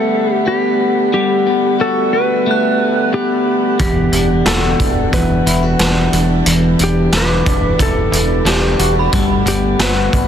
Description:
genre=dream pop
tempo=90 BPM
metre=4/4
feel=straight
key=E minor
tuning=A4 = 442 Hz
part: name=clean lap steel guitar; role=melody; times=0.0-10.3 s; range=G4 to B4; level=-19 LUFS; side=left 3 dB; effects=tape echo
part: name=mellow brass ensemble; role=sustained chords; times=0.0-10.3 s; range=D3 to F#5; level=-21 LUFS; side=right 4 dB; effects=none
part: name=electric guitar at the edge of break-up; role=arpeggios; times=0.0-10.3 s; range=E2 to F#4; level=-17 LUFS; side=left 2 dB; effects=lush chorus, tape echo
part: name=synth chime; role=texture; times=2.5-9.4 s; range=B5 to F#6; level=-26 LUFS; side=right 6 dB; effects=ensemble chorus, tape echo
part: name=plucky analog bass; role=bass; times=3.8-10.3 s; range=E1 to G1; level=-18 LUFS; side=right 1 dB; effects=none
part: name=raw garage drum kit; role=drums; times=3.8-10.3 s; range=hi-hat, kick drum, snare drum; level=-17 LUFS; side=right 1 dB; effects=none
room=light reverb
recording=dense, heavily limited modern master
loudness=-12 LUFS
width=side -9 dB against mid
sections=0.0-10.3 A section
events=none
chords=0.0 Gmaj9; 3.8 Em9; 9.1 Gmaj9

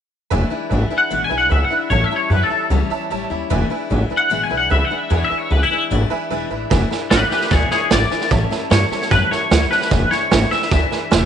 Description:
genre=rockabilly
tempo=150 BPM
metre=4/4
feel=straight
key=E mixolydian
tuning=A4 = 439 Hz
part: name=honky-tonk upright piano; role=accompaniment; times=0.3-11.2 s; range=B4 to B5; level=-27 LUFS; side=right 13 dB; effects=none
part: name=picked steel-string acoustic guitar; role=accompaniment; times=0.3-11.3 s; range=E2 to E4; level=-25 LUFS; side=left 11 dB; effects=none
part: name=upright bass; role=bass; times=0.3-11.3 s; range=E1 to G2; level=-18 LUFS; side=equal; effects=none
part: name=twangy electric guitar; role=melody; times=1.0-11.3 s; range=E4 to G#5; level=-19 LUFS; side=left 2 dB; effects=analog chorus, tape echo
part: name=vintage drum kit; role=drums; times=6.7-11.2 s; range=hi-hat, kick drum, snare drum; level=-18 LUFS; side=right 4 dB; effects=none
room=light reverb, studio ambience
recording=1960s-style stereo with parts hard left and right, nothing above 10.9 kHz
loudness=-15 LUFS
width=side -8 dB against mid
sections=0.3-6.7 A section; 6.7-11.3 B section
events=none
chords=0.3 E7; 1.9 A7; 3.5 E7; 8.3 A7; 9.9 E7

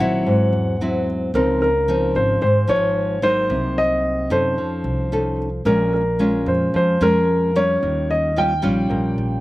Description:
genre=bossa nova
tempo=111 BPM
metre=4/4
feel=straight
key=unclear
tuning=A4 = 440 Hz
part: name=warm concert grand piano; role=melody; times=0.0-9.4 s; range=Bb4 to G5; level=-20 LUFS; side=equal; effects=none
part: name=nylon-string guitar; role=accompaniment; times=0.0-9.4 s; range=Ab2 to A4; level=-20 LUFS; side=equal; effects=slapback echo
part: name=upright bass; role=bass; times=0.0-9.4 s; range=Ab1 to Gb2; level=-25 LUFS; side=equal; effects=none
room=little or no reverb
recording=recorded outdoors, with no room sound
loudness=-17 LUFS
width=side -17 dB against mid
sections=0.0-9.4 A section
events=none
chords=0.3 Abaug7; 1.3 Dbmaj9; 3.5 Cm7b5; 4.6 F7b13; 5.7 Bbm7; 7.8 Eb9

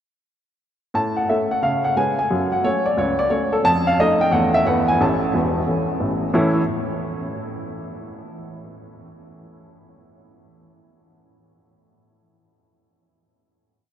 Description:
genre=jazz, stride piano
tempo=178 BPM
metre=4/4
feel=swing 65% on 8ths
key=A major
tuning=A4 = 439 Hz
part: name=warm upright piano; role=solo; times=0.9-6.6 s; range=E1 to A5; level=-18 LUFS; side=equal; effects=none
room=wet cathedral reverb, RT60 6.5 s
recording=in a vast, echoing space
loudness=-17 LUFS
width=side -10 dB against mid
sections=1.0-6.3 A section; 6.3-7.7 final chord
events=none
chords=1.0 A; 1.6 C#5; 2.3 F#m; 3.6 F7; 4.3 A/E; 4.7 E; 5.0 A

